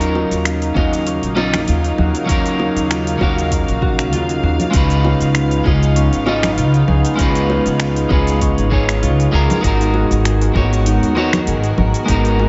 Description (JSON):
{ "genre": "sunset chillout", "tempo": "98 BPM", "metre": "4/4", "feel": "swing 54% on 16ths", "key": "Eb minor", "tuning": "A4 = 440 Hz", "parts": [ { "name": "electric guitar at the edge of break-up", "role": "accompaniment", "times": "0.0-12.5 s", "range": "Gb3 to F5", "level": "-22 LUFS", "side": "equal", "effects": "diffuse ambient delay" }, { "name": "dark studio string section", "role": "sustained chords", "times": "0.0-12.5 s", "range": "Db3 to F5", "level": "-25 LUFS", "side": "equal", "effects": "none" }, { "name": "concert harp", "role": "arpeggios", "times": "0.0-12.5 s", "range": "Db4 to Bb4", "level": "-26 LUFS", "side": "equal", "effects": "diffuse ambient delay" }, { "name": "upright bass", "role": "bass", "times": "0.0-12.5 s", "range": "Ab1 to Eb2", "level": "-20 LUFS", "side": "equal", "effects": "none" }, { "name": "deep house drum kit", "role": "drums", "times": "0.0-12.4 s", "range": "congas, finger snaps, hi-hat, shaker", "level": "-25 LUFS", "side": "equal", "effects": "none" }, { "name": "bongos", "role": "percussion", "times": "0.2-12.5 s", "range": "none", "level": "-27 LUFS", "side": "equal", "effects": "none" }, { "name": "electronic kick drum", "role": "drums", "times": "0.8-12.2 s", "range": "none", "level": "-21 LUFS", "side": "equal", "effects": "none" } ], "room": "moderate plate reverb, RT60 1.7 s, small room ambience", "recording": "dreamy mix soaked in reverb, nothing above 7.8 kHz", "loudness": "-16 LUFS", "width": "mono", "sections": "0.0-12.5 A section", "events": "none", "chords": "0.0 Ebm9; 4.7 Db9", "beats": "0.46 1.07 1.68 | 2.29 2.90 3.52 4.13 | 4.74 5.35 5.96 6.58 | 7.19 7.80 8.41 9.03 | 9.64 10.25 10.86 11.47 | 12.09" }